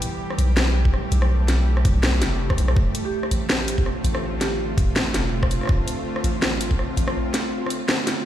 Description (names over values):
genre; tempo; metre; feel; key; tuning
half-time drum and bass; 164 BPM; 4/4; swing 56% on 16ths, half-time; unclear; A4 = 440 Hz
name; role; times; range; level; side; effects
bowed-like drone; sustained chords; 0.0-8.3 s; D3 to G4; -28 LUFS; equal; built-in reverb, vintage 12-bit sampler grit, sidechain pumping
drum and bass drum kit; drums; 0.0-8.2 s; hi-hat, rim click, snare drum; -25 LUFS; equal; none
long sustained 808-style bass; bass; 0.4-7.2 s; D1 to B1; -22 LUFS; equal; none
electronic kick drum; drums; 0.9-6.8 s; none; -21 LUFS; equal; none
vibraphone with medium mallets; melody; 3.0-4.6 s; G4; -33 LUFS; right 4 dB; dub echo
room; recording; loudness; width
light reverb; played on a big sound system in a bare room, stone room reverb; -19 LUFS; side -12 dB against mid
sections
0.0-8.3 A section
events
none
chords
0.0 Em; 2.8 Dm7